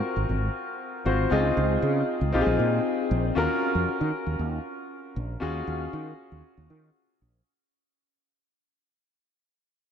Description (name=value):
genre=polished 1980s jazz-funk pop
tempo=117 BPM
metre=4/4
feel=straight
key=Eb dorian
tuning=A4 = 440 Hz
part: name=clear concert grand piano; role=accompaniment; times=0.0-7.5 s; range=C4 to C5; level=-26 LUFS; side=left 2 dB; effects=lush chorus
part: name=fretless electric bass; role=bass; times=0.2-7.4 s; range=Ab1 to Eb3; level=-26 LUFS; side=equal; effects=analog chorus
room=wet huge ambient reverb, RT60 4.5 s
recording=dreamy mix soaked in reverb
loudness=-24 LUFS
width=side -8 dB against mid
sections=0.0-3.4 A section; 3.4-7.5 B section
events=fade-out 3.4-7.5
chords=0.0 Ab13; 1.3 Dbmaj9; 2.3 Bb7sus4; 3.4 Ebm7